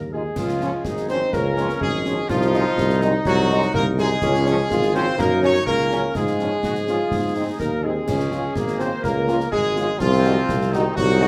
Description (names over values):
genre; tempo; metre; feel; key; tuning
military-style march for wind band; 124 BPM; 2/4; straight; Db major; A4 = 439 Hz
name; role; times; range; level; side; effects
dark woodwind section; second line; 0.0-11.3 s; Eb4 to Db5; -30 LUFS; equal; none
warm tuba; bass; 0.0-11.3 s; Ab1 to Ab2; -25 LUFS; equal; none
dark trumpet section; melody; 0.1-11.3 s; Eb4 to Db5; -30 LUFS; equal; none
clear euphonium; second line; 0.1-11.3 s; Eb3 to Db4; -29 LUFS; equal; none
mellow French horn section; accompaniment; 0.1-11.3 s; Eb3 to Gb4; -31 LUFS; equal; none
clear trombone section; sustained chords; 0.1-11.3 s; Ab3 to Gb4; -30 LUFS; equal; none
concert snare drum, clash cymbals and concert bass drum; drums; 0.4-11.3 s; none; -33 LUFS; equal; none
room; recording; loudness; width
moderate large studio reverb, RT60 1.1 s; none; -21 LUFS; mono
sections
0.4-11.3 A section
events
none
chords
0.4 Db; 2.3 Ab7/C; 4.2 Db; 5.2 Gb; 6.2 Db/Ab; 7.1 Ab; 8.1 Db; 10.0 Ab7/C